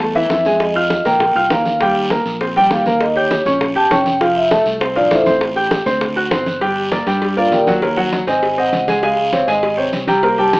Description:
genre	Afro-Cuban jazz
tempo	200 BPM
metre	4/4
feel	straight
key	unclear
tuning	A4 = 439 Hz
part	warm baby grand piano	accompaniment	0.0-10.6 s	C3 to G6	-17 LUFS	equal	none
part	fingered electric bass	bass	0.0-10.6 s	F1 to G2	-26 LUFS	equal	none
part	bongos and cowbell	percussion	0.0-10.6 s	none	-23 LUFS	left 1 dB	none
part	congas	percussion	0.0-10.6 s	none	-25 LUFS	equal	none
part	guiro	percussion	0.0-10.6 s	none	-30 LUFS	right 2 dB	none
part	vibraphone with soft mallets	melody	0.1-5.3, 7.4-10.6 s	D4 to Bb5	-16 LUFS	equal	none
room	moderate studio reverb, RT60 0.9 s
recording	AM radio sound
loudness	-13 LUFS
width	side -23 dB against mid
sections	0.0-6.6 A section; 6.6-10.6 A section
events	vibraphone solo 0.0-10.6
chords	0.0 A5; 0.6 Fm7; 1.2 Bbsus2; 1.8 Eb6; 3.0 Eb9; 4.2 Fmaj7; 5.4 Am7; 6.0 D7; 6.6 Gm7; 7.8 Ebm7; 8.4 Ab7; 9.0 Dbmaj7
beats	0.00 0.30 | 0.60 0.90 1.21 1.51 | 1.81 2.11 2.41 2.71 | 3.01 3.31 3.61 3.91 | 4.21 4.51 4.81 5.11 | 5.41 5.71 6.02 6.32 | 6.62 6.92 7.22 7.52 | 7.82 8.12 8.43 8.73 | 9.03 9.33 9.63 9.93 | 10.23 10.54

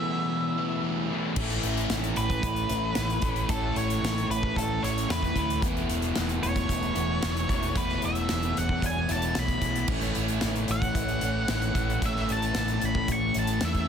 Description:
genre	quiet-loud alternative rock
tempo	113 BPM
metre	4/4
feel	straight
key	unclear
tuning	A4 = 440 Hz
part	octave-fuzz lead guitar	melody	0.0-13.9 s	A4 to C#6	-31 LUFS	right 1 dB	distortion, digital delay
part	dark studio string section	sustained chords	0.0-13.9 s	E3 to B5	-42 LUFS	left 1 dB	none
part	crunchy overdriven guitar	riff	0.0-13.9 s	A2 to E4	-34 LUFS	equal	none
part	overdriven electric guitar	riff	0.0-13.9 s	E2 to A3	-33 LUFS	left 11 dB	none
part	thick fuzz guitar	riff	0.0-13.9 s	A2 to E4	-35 LUFS	right 12 dB	distortion
part	fingered electric bass	bass	1.4-13.8 s	E1 to E2	-31 LUFS	equal	none
part	big rock drum kit	drums	1.4-13.9 s	crash cymbal, hi-hat, kick drum, snare drum	-31 LUFS	equal	none
room	light reverb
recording	dense, heavily limited modern master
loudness	-25 LUFS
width	side -8 dB against mid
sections	0.0-1.4 A section; 1.4-13.9 B section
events	break 0.0-1.4; lead electric guitar solo 1.4-13.9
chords	0.0 Esus4; 1.4 Aadd9; 5.6 Esus4; 9.9 Aadd9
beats	0.32 0.84 | 1.38 1.91 2.44 2.97 | 3.50 4.03 4.56 5.09 | 5.62 6.16 6.69 7.22 | 7.76 8.29 8.82 9.36 | 9.89 10.42 10.96 11.49 | 12.02 12.55 13.09 13.62

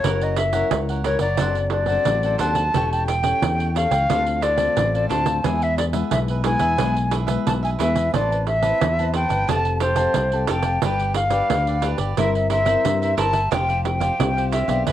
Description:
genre	samba and choro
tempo	89 BPM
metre	4/4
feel	straight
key	A minor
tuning	A4 = 440 Hz
part	concert flute	melody	0.0-14.9 s	C5 to A5	-22 LUFS	left 1 dB	cassette tape, plate reverb
part	cavaquinho	accompaniment	0.0-14.9 s	D4 to A5	-29 LUFS	right 5 dB	cassette tape, plate reverb
part	fingered electric bass with an envelope filter	bass	0.0-14.9 s	E1 to G2	-24 LUFS	equal	none
part	pandeiro	percussion	0.0-14.9 s	none	-26 LUFS	right 8 dB	none
part	nylon-string guitar	accompaniment	0.1-14.9 s	A2 to B4	-28 LUFS	left 7 dB	cassette tape, plate reverb
room	moderate studio reverb, RT60 0.5 s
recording	home recording on cassette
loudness	-18 LUFS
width	side -12 dB against mid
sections	0.0-14.9 A section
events	none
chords	0.0 F#7; 1.4 D7/F#; 2.7 A7/E; 4.1 Dm7; 5.4 E; 8.1 Amadd9; 9.5 Fadd9; 10.8 G; 12.2 C7/G; 13.5 Fsus2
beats	| 0.05 0.72 1.40 2.07 | 2.75 3.42 4.09 4.77 | 5.45 6.12 6.79 7.47 | 8.14 8.81 9.49 10.16 | 10.84 11.51 12.18 12.85 | 13.52 14.19 14.87

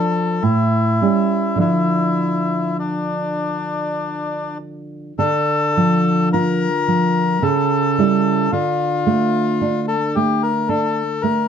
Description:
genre	romantic duo for bandoneon and classical guitar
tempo	49-57 BPM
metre	3/4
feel	rubato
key	D minor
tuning	A4 = 445 Hz
part	bandoneon	melody	0.0-11.5 s	D4 to Bb4	-20 LUFS	left 5 dB	none
part	nylon-string guitar	accompaniment	0.0-11.5 s	A2 to F4	-18 LUFS	right 3 dB	none
room	light reverb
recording	none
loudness	-16 LUFS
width	side -8 dB against mid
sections	0.0-5.2 A section; 5.2-11.5 A section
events	none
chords	0.4 A7; 1.6 Dm; 7.4 A7/C#; 8.5 Dm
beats	0.43 | 1.60 2.80 3.98 | 5.18 6.33 7.43 | 8.52 9.61 10.70

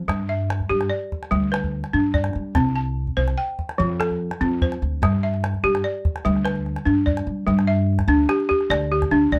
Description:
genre	west african traditional, West African string and xylophone music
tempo	97 BPM (dotted quarters)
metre	12/8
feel	straight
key	G mixolydian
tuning	A4 = 440 Hz
part	balafon	arpeggios	0.0-9.4 s	F3 to A5	-24 LUFS	equal	none
part	upright bass	bass	0.0-9.4 s	C2 to G3	-26 LUFS	equal	none
part	calabash	percussion	0.1-9.1 s	none	-29 LUFS	equal	none
room	light reverb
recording	dark, warm production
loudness	-22 LUFS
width	mono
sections	0.0-7.5 A section; 7.5-9.4 B section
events	none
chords	0.1 G; 2.6 C5; 3.8 F; 5.0 G; 7.5 G5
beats	| 0.09 0.70 1.32 1.94 | 2.55 3.17 3.79 4.40 | 5.02 5.63 6.25 6.86 | 7.48 8.09 8.71 9.32

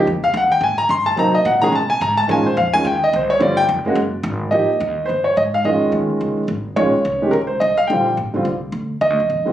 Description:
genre	jazz piano trio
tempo	214 BPM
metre	4/4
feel	swing 60% on 8ths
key	F minor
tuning	A4 = 440 Hz
part	warm concert grand piano	melody	0.0-9.5 s	D3 to C6	-15 LUFS	equal	none
part	upright bass	bass	0.0-9.5 s	F1 to C3	-25 LUFS	equal	none
room	light reverb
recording	recorded on a phone in the room, club reverb, compression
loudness	-15 LUFS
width	side -11 dB against mid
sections	0.0-4.5 A section; 4.5-9.5 B section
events	grand piano solo 0.0-4.5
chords	0.1 Fm9; 1.2 Cm7b5; 1.7 Abmadd9; 2.3 Bbm11; 3.4 G7(no3); 4.0 Gbsus2; 4.5 Fm9; 5.6 Dbadd9; 6.8 Bbm7; 7.9 Bb13; 9.0 Ebmaj7(no3)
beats	| 0.06 0.34 0.62 0.90 | 1.17 1.45 1.73 2.01 | 2.29 2.57 2.85 3.13 | 3.41 3.69 3.97 4.25 | 4.53 4.81 5.09 5.37 | 5.65 5.93 6.21 6.49 | 6.77 7.05 7.33 7.61 | 7.89 8.17 8.45 8.73 | 9.01 9.29

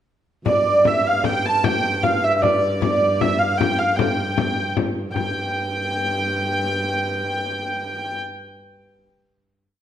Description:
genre	medieval dance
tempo	154 BPM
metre	3/4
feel	straight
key	unclear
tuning	A4 = 440 Hz
part	dark hurdy-gurdy	melody	0.5-8.2 s	D5 to A5	-20 LUFS	right 1 dB	none
part	dark viola da gamba	drone	0.5-8.2 s	G2	-28 LUFS	right 1 dB	none
part	frame drum	percussion	0.5-5.3 s	none	-24 LUFS	left 5 dB	none
room	wet recital hall reverb, RT60 1.3 s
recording	dark, warm production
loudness	-18 LUFS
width	side -10 dB against mid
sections	0.5-5.2 A section; 5.2-7.5 final note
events	none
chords	none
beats	| 0.46 0.86 1.25 | 1.65 2.04 2.43 | 2.83 3.22 3.61 | 4.00 4.38 4.77 | 5.16 5.54 5.93 | 6.31 6.69 7.07

